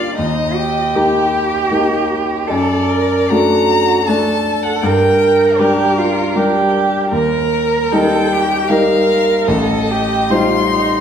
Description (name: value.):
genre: classical, slow romantic movement for piano trio.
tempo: 78 BPM.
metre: 3/4.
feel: rubato.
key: unclear.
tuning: A4 = 439 Hz.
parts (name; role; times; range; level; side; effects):
clear violin; melody; 0.0-11.0 s; G4 to C6; -20 LUFS; left 5 dB; none.
rich cello; second line; 0.0-11.0 s; Eb4 to Bb4; -16 LUFS; right 4 dB; none.
clear concert grand piano; accompaniment; 0.0-11.0 s; A1 to C5; -16 LUFS; left 2 dB; none.
room: wet recital hall reverb, RT60 1.3 s.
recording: recorded in a church or concert hall.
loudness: -12 LUFS.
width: side -8 dB against mid.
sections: 0.0-11.0 A section.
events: none.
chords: 0.2 Eb; 2.5 D/F#; 4.8 Gm; 7.1 Eb; 9.5 Am7b5.